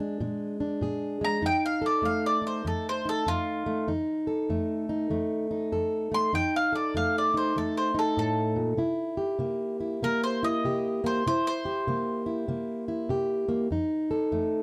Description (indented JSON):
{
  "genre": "acoustic country blues, solo or duo",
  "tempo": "98 BPM",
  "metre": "4/4",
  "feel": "swing 64% on 8ths",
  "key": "F mixolydian",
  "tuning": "A4 = 440 Hz",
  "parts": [
    { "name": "fingerpicked plugged-in steel-string acoustic guitar", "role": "accompaniment", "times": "0.0-14.6 s", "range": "F2 to A4", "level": "-30 LUFS", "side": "equal", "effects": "none" },
    { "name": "mandolin", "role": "melody", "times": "1.2-13.3 s", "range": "F4 to C6", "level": "-30 LUFS", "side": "equal", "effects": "none" }
  ],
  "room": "small room ambience",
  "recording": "dry, close 1970s-style studio recording",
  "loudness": "-28 LUFS",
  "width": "mono",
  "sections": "0.0-14.6 A section",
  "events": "none",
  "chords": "0.0 Bb7; 1.4 F7; 8.8 C7; 13.7 F7",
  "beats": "0.21 0.82 | 1.43 2.04 2.66 3.27 | 3.88 4.49 5.11 5.72 | 6.33 6.95 7.56 8.17 | 8.79 9.40 10.01 10.63 | 11.24 11.86 12.47 13.08 | 13.69 14.31"
}